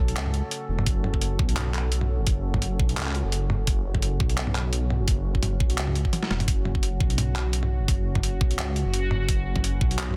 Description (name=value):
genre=half-time drum and bass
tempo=171 BPM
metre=4/4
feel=swing 55% on 16ths, half-time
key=F# minor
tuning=A4 = 441 Hz
part: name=deep dark ambient pad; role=sustained chords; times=0.0-10.2 s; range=C#4 to B4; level=-38 LUFS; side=equal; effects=chorus, built-in reverb, sidechain pumping
part: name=dark detuned saw bass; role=bass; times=0.0-10.2 s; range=E1 to C#2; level=-28 LUFS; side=equal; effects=none
part: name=boom bap sampler-style drum kit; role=drums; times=0.1-10.2 s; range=handclaps, hi-hat, snare drum, toms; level=-32 LUFS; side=equal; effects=overdrive
part: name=electronic kick drum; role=drums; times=0.9-9.9 s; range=none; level=-27 LUFS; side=equal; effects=none
part: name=backwards swelling texture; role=texture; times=7.1-10.2 s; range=F#4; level=-40 LUFS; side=equal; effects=built-in reverb
room=digital ambience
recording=dense, heavily limited modern master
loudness=-25 LUFS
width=mono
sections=0.0-10.2 A section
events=drum fill 6.1-6.5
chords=0.0 F#m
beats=0.16 0.51 | 0.86 1.22 1.57 1.92 | 2.27 2.62 2.97 3.32 | 3.67 4.02 4.37 4.72 | 5.07 5.42 5.78 6.13 | 6.48 6.83 7.18 7.53 | 7.88 8.23 8.58 8.93 | 9.29 9.64 9.99